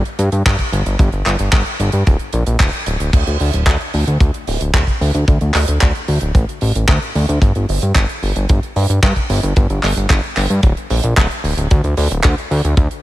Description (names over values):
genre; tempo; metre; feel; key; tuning
italo disco; 112 BPM; 4/4; straight; unclear; A4 = 440 Hz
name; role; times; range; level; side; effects
fat analog bass; bass; 0.0-12.9 s; D1 to G2; -16 LUFS; equal; ping-pong delay
damped 70s drum kit; drums; 0.1-13.0 s; crash cymbal, handclaps, hi-hat; -21 LUFS; right 1 dB; high-pass filter on hats, small room ambience, high-pass filter on cymbals, high-pass filter on snare, high-pass filter on room
kick drum; drums; 0.5-12.9 s; none; -14 LUFS; equal; small room ambience
room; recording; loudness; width
little or no reverb; none; -13 LUFS; side -16 dB against mid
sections
0.0-3.1 A section; 3.1-13.0 B section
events
none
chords
none